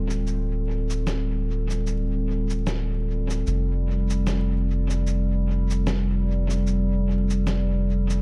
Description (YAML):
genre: ambient dub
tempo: 75 BPM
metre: 4/4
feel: swing 58% on 16ths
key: unclear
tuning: A4 = 440 Hz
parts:
  - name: warbly tape-like pad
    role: sustained chords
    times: 0.0-8.2 s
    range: G3 to A4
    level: -31 LUFS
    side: equal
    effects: chorus, built-in reverb
  - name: soft dub sub bass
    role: bass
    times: 0.0-8.2 s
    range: D1 to F1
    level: -26 LUFS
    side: equal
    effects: none
  - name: electronic cabasa and snare drum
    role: drums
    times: 0.1-8.2 s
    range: none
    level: -36 LUFS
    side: equal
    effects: dub echo
room: light reverb, digital ambience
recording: echo-heavy mix, vinyl crackle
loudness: -25 LUFS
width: mono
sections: 0.0-8.2 A section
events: none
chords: 0.0 Dm7; 3.5 F